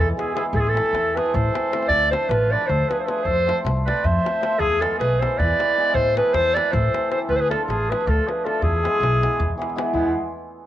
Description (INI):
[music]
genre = balkan folk, Balkan wedding band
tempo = 312 BPM (eighths)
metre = 7/8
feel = straight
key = E phrygian dominant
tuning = A4 = 441 Hz
[part]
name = mellow clarinet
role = melody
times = 0.0-10.1 s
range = E4 to E5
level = -21 LUFS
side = equal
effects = cassette tape, plate reverb
[part]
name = clear oboe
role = second line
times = 0.0-10.1 s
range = B3 to C5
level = -30 LUFS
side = right 6 dB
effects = plate reverb
[part]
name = cimbalom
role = accompaniment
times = 0.0-10.1 s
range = E3 to A4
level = -27 LUFS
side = equal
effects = plate reverb
[part]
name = upright bass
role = bass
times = 0.0-10.1 s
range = A1 to F2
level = -24 LUFS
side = equal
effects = none
[part]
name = davul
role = percussion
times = 0.2-10.1 s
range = none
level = -30 LUFS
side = left 2 dB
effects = none
[sound]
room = moderate studio reverb, RT60 0.6 s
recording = home recording on cassette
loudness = -18 LUFS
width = side -12 dB against mid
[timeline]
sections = 0.0-9.9 A section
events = speeding up 0.0-10.7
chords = 0.0 E; 0.5 Am; 1.9 Dm; 3.2 F; 4.6 E; 5.9 Am; 7.3 Dm; 8.6 E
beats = 0.15 0.34 | 0.53 0.73 0.92 1.12 1.31 1.50 1.70 | 1.89 2.08 2.28 2.47 2.67 2.86 3.05 | 3.25 3.44 3.63 3.83 4.02 4.21 4.41 | 4.60 4.79 4.98 5.18 5.37 5.56 5.75 | 5.95 6.14 6.33 6.52 6.71 6.90 7.10 | 7.29 7.48 7.67 7.86 8.05 8.24 8.43 | 8.62 8.81 9.00 9.19 9.37 9.56 9.75 | 9.94 10.13